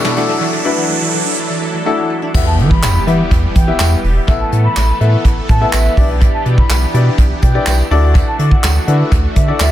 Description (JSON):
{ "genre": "dance-pop", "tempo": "124 BPM", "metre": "4/4", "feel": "straight", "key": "unclear", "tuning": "A4 = 439 Hz", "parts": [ { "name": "clear grand piano", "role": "accompaniment", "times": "0.0-9.7 s", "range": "B2 to E5", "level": "-19 LUFS", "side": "left 5 dB", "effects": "sidechain pumping, tape echo" }, { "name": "filtered supersaw swell", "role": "sustained chords", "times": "0.0-9.7 s", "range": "B2 to B4", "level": "-22 LUFS", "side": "right 1 dB", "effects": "sidechain pumping" }, { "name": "glassy wavetable pluck", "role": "arpeggios", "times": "0.0-2.3 s", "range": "B2 to D4", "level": "-24 LUFS", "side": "right 3 dB", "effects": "chorus, sidechain pumping, tape echo" }, { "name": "soft brush drum kit", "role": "drums", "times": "0.0-9.7 s", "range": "crash cymbal, handclaps, hi-hat, kick drum, snare drum", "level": "-15 LUFS", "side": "equal", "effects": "tape echo" }, { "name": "riser and impact", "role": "sound effects", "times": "0.0-4.3 s", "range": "none", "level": "-21 LUFS", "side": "right 1 dB", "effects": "none" }, { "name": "saturated sub bass", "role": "bass", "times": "2.3-9.7 s", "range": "E1 to E3", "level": "-13 LUFS", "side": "equal", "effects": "sidechain pumping" }, { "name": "mellow silver concert flute", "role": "melody", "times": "2.5-9.7 s", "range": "E5 to B5", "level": "-23 LUFS", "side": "right 1 dB", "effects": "sidechain pumping, tape echo" }, { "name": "tambourine", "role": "percussion", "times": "2.8-9.7 s", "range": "none", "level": "-29 LUFS", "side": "right 7 dB", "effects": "tape echo" } ], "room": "light reverb, small room reverb", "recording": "echo-heavy mix", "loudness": "-11 LUFS", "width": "side -13 dB against mid", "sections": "0.0-2.3 A section; 2.3-9.7 B section", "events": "build-up 0.0-2.3; drum fill 0.0-0.4; riser 0.0-2.3; drop 2.3-9.7; impact 2.3-4.3", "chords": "0.2 Dadd9; 2.3 Em; 4.3 Asus2; 6.0 G6/B; 7.9 Dadd9", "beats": "| 0.41 0.89 1.38 1.86 | 2.35 2.83 3.31 3.80 | 4.28 4.76 5.25 5.73 | 6.22 6.70 7.18 7.67 | 8.15 8.63 9.12 9.60" }